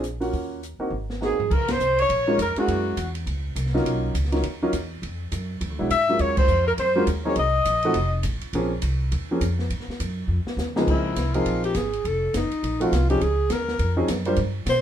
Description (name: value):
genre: jazz, small-group swing and bop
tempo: 205 BPM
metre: 4/4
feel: swing 61% on 8ths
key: Db major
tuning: A4 = 440 Hz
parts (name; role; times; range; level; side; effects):
- warm upright piano; accompaniment; 0.0-14.4 s; Db2 to C5; -25 LUFS; right 1 dB; none
- upright bass; bass; 0.0-14.8 s; F1 to Cb3; -26 LUFS; equal; none
- open jazz drum kit; drums; 0.0-14.8 s; crash cymbal, hi-hat, kick drum, ride cymbal, rim click, snare drum, toms; -30 LUFS; right 1 dB; none
- breathy alto saxophone; melody; 1.2-3.1, 5.9-8.2, 10.9-14.8 s; Eb4 to E5; -23 LUFS; left 1 dB; none
- warm trumpet; second line; 1.2-3.1, 5.9-8.2 s; Gb4 to E5; -28 LUFS; right 1 dB; none
room: moderate studio reverb, RT60 0.5 s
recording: minimal, uncompressed stereo recording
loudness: -21 LUFS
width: side -10 dB against mid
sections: 0.0-1.5 A section; 1.5-10.9 B section; 10.9-14.8 C section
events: drum fill 0.9-1.5, 10.3-10.9; band accent 1.6, 6.3; alto saxophone solo 10.9-14.8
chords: 0.3 Ebm7; 0.9 Ab7; 1.5 Db6; 2.7 Gb9; 3.8 Cbmaj9#11; 5.0 N.C.; 5.6 E9; 6.2 Ebm11; 7.4 Cm7b5; 7.9 F7; 8.5 Bbm9; 9.7 Ab7(no3); 10.9 Dbmaj13; 12.0 F7b9; 13.2 Bbm11